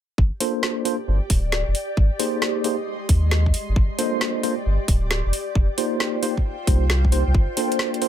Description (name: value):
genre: UK garage, two-step garage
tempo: 134 BPM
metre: 4/4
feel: swing 67% on 16ths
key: G phrygian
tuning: A4 = 441 Hz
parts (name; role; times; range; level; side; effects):
- soft dub sub bass; bass; 0.2-7.5 s; D1 to Eb2; -20 LUFS; equal; none
- electronic kick drum; drums; 0.2-7.5 s; none; -20 LUFS; equal; none
- ethereal airy pad; texture; 0.7-8.1 s; Ab3 to C6; -30 LUFS; left 1 dB; ensemble chorus, built-in reverb, phaser, sidechain pumping
- mellow tine electric piano; stabs; 0.4-8.1 s; Bb3 to C5; -24 LUFS; equal; medium stereo tremolo, digital delay
- garage drum kit; drums; 0.4-8.1 s; hi-hat, snare drum; -26 LUFS; equal; none
room: light reverb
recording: none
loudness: -19 LUFS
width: side -10 dB against mid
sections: 0.2-8.1 A section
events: none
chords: 0.2 Gm11; 2.0 Abmaj9; 3.5 Gm11; 5.3 F7sus4; 7.3 Gm11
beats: | 0.18 0.63 1.08 1.52 | 1.97 2.42 2.87 3.31 | 3.76 4.21 4.66 5.11 | 5.55 6.00 6.45 6.90 | 7.34 7.79